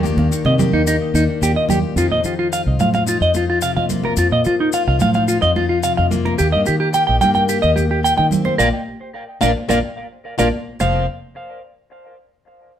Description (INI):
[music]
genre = highlife guitar band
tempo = 109 BPM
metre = 4/4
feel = straight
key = unclear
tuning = A4 = 441 Hz
[part]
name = picked plugged-in steel-string acoustic guitar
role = accompaniment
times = 0.0-11.1 s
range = F2 to G4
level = -23 LUFS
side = left 5 dB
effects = none
[part]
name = fingered electric bass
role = bass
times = 0.0-11.1 s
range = F1 to F3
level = -19 LUFS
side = equal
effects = none
[part]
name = congas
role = percussion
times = 0.0-11.1 s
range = none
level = -24 LUFS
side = right 4 dB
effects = none
[part]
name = maracas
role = percussion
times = 0.1-11.1 s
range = none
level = -30 LUFS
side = left 6 dB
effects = none
[part]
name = clean electric guitar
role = arpeggios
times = 0.5-11.1 s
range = Eb4 to G5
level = -18 LUFS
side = right 1 dB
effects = analog delay
[sound]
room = moderate studio reverb, RT60 0.8 s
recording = band playing live in one room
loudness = -15 LUFS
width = side -10 dB against mid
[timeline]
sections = 0.0-2.0 A section; 2.0-10.8 B section; 10.8-12.8 C section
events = band accent 8.6-10.8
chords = 0.0 Ebmaj7; 2.0 F7sus4; 6.4 Eb6; 8.6 Bb; 10.8 F5